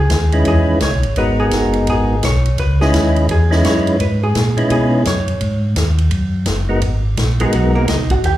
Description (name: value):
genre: soul jazz organ trio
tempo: 170 BPM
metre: 4/4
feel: swing 64% on 8ths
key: G# minor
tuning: A4 = 441 Hz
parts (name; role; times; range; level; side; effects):
- vintage hollow-body jazz guitar; accompaniment; 0.0-8.4 s; F#3 to G5; -21 LUFS; right 1 dB; plate reverb, slapback echo
- mellow tonewheel organ; bass; 0.0-8.4 s; F#1 to B2; -16 LUFS; equal; chorus vibrato, slow rotary speaker
- swinging big-band drum kit; drums; 0.1-8.3 s; hi-hat, kick drum, ride cymbal, snare drum; -23 LUFS; left 1 dB; none
- percussive tonewheel organ; melody; 0.3-7.9 s; G#3 to B4; -18 LUFS; equal; slow rotary speaker, plate reverb
room: light reverb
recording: live gig heard through the venue's PA, club reverb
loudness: -13 LUFS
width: side -14 dB against mid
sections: 0.0-8.4 A section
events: hollow-body jazz guitar solo 0.0-8.4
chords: 0.0 C#m7; 1.2 G#m7; 2.6 C#m7; 5.4 G#m7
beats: 0.10 0.45 0.81 | 1.16 1.52 1.87 2.23 | 2.58 2.93 3.29 3.64 | 3.99 4.35 4.70 5.05 | 5.41 5.76 6.12 6.47 | 6.82 7.17 7.53 7.88 | 8.24